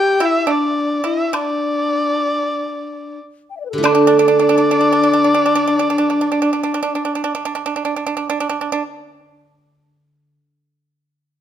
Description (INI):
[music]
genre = chinese traditional, Chinese chamber ensemble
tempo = 45-56 BPM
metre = 4/4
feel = straight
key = unclear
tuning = A4 = 440 Hz
[part]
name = dark erhu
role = melody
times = 0.0-7.4 s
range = D5 to G5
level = -20 LUFS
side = equal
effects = none
[part]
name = bright reedy low xiao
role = second line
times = 0.0-7.4 s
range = D4 to G5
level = -19 LUFS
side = left 4 dB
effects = none
[part]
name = pipa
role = second line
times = 0.0-8.8 s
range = D4 to E4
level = -20 LUFS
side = right 6 dB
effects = none
[part]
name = steel-string zither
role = accompaniment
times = 0.0-10.4 s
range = D3 to D4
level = -16 LUFS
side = right 4 dB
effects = none
[part]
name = woodblock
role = percussion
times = 0.2-4.5 s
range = none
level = -24 LUFS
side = left 4 dB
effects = none
[sound]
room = moderate recital hall reverb, RT60 1.4 s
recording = close, detailed microphones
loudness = -15 LUFS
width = side -10 dB against mid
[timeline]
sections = 0.0-3.9 A section; 3.9-9.1 B section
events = slowing down 0.0-3.9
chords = none